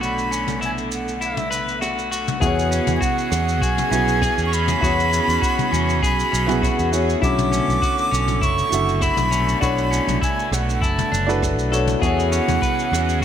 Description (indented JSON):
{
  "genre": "sunset chillout",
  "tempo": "100 BPM",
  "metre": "4/4",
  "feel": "straight",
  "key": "E mixolydian",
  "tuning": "A4 = 440 Hz",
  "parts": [
    { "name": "breathy bright concert flute", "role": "melody", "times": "0.0-13.2 s", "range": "E5 to D6", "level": "-24 LUFS", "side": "equal", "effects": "digital delay" },
    { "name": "warm concert grand piano", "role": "accompaniment", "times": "0.0-13.2 s", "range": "D3 to F#5", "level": "-24 LUFS", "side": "moving between left 4 dB and right 9 dB", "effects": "auto-pan, digital delay" },
    { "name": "bright chamber string section", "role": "sustained chords", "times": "0.0-13.2 s", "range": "D3 to G#4", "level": "-27 LUFS", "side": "right 3 dB", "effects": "none" },
    { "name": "clean electric guitar", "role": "arpeggios", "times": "0.0-13.2 s", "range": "C#4 to B4", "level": "-27 LUFS", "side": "left 4 dB", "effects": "spring reverb, digital delay" },
    { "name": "fingered electric bass", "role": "bass", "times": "0.0-13.2 s", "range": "F#1 to E2", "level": "-24 LUFS", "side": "equal", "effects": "none" },
    { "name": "jazz brush drum kit", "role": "drums", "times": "0.0-13.2 s", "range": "rim click, shaker, toms", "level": "-28 LUFS", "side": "left 2 dB", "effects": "gated reverb" },
    { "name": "electronic kick drum", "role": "drums", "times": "2.4-13.2 s", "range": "none", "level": "-25 LUFS", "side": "equal", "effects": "overdrive" }
  ],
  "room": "light reverb",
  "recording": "bright 1980s-style digital production",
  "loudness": "-17 LUFS",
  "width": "side -9 dB against mid",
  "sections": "0.0-2.4 A section; 2.4-13.2 B section",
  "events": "none",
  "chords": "0.0 Bm11; 2.4 E69; 7.2 Bm11; 12.0 E69"
}